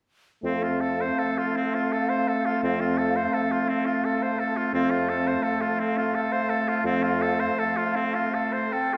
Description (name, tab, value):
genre	classical, slow romantic movement for wind quintet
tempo	84 BPM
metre	3/4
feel	uneven beats, rubato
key	F major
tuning	A4 = 440 Hz
part	clear oboe	second line	0.4-9.0 s	C4 to C5	-30 LUFS	equal	none
part	dark clarinet	accompaniment	0.4-8.7 s	C4	-34 LUFS	equal	none
part	warm French horn	accompaniment	0.4-8.7 s	A3	-32 LUFS	equal	none
part	mellow bassoon	bass	0.4-7.5 s	F2	-34 LUFS	equal	none
part	mellow hollow silver concert flute	melody	0.5-9.0 s	F5 to G5	-33 LUFS	equal	none
room	wet cathedral reverb, RT60 4.7 s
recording	recorded in a church or concert hall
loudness	-25 LUFS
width	mono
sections	0.4-9.0 A section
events	none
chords	0.4 F